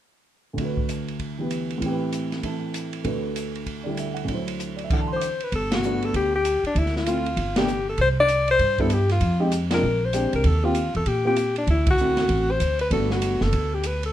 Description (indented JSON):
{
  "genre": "jazz, small-group swing and bop",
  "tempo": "195 BPM",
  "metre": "4/4",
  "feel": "swing 63% on 8ths",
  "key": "G major",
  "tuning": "A4 = 441 Hz",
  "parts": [
    { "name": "warm baby grand piano", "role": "accompaniment", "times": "0.5-13.8 s", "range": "D2 to D6", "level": "-27 LUFS", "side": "right 1 dB", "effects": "none" },
    { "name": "open jazz drum kit", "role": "drums", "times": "0.6-14.1 s", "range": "crash cymbal, hi-hat, kick drum, ride cymbal, snare drum", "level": "-30 LUFS", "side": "right 1 dB", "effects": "none" },
    { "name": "breathy alto saxophone", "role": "melody", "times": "5.1-14.1 s", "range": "D4 to D5", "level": "-23 LUFS", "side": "left 2 dB", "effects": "none" },
    { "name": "upright bass", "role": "bass", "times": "5.5-14.1 s", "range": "F#1 to Bb2", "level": "-24 LUFS", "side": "right 1 dB", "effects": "none" }
  ],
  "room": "moderate club reverb, RT60 0.7 s",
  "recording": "none",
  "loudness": "-21 LUFS",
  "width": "side -12 dB against mid",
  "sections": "0.6-5.5 A section; 5.5-14.1 B section",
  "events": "band accent 5.7, 7.5, 9.7, 11.8",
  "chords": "0.6 Gmaj7/D; 1.8 Am7; 3.1 Gmaj7/D; 4.3 D7; 5.5 Gmaj9; 6.8 Dm9; 7.4 Gadd9; 8.0 C5; 9.2 Fm9; 9.8 Bb13; 10.4 Eb69; 11.7 D9; 12.9 Gmaj9"
}